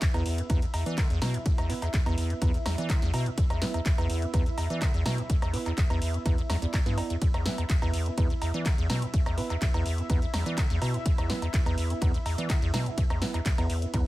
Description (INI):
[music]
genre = acid house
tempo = 125 BPM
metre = 4/4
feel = straight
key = unclear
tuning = A4 = 441 Hz
[part]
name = warm analog pad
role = sustained chords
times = 0.0-14.1 s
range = E4 to E5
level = -40 LUFS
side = right 1 dB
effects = chorus, tremolo, vintage 12-bit sampler grit, sidechain pumping
[part]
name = acid bass, square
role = riff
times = 0.0-14.0 s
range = E2 to E3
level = -29 LUFS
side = equal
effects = analog chorus
[part]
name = electronic kick drum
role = drums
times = 0.0-14.0 s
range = none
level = -27 LUFS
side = equal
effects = none
[part]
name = punchy analog drum machine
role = drums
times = 0.0-14.0 s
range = cowbell, handclaps, hi-hat, ride cymbal, rim click, snare drum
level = -35 LUFS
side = equal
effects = none
[part]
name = bell-like tine electric piano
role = stabs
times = 0.1-14.0 s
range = B3 to D5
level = -37 LUFS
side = right 5 dB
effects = dub echo
[sound]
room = light reverb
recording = none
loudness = -25 LUFS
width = side -17 dB against mid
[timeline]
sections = 0.0-14.1 A section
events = none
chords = 0.0 E5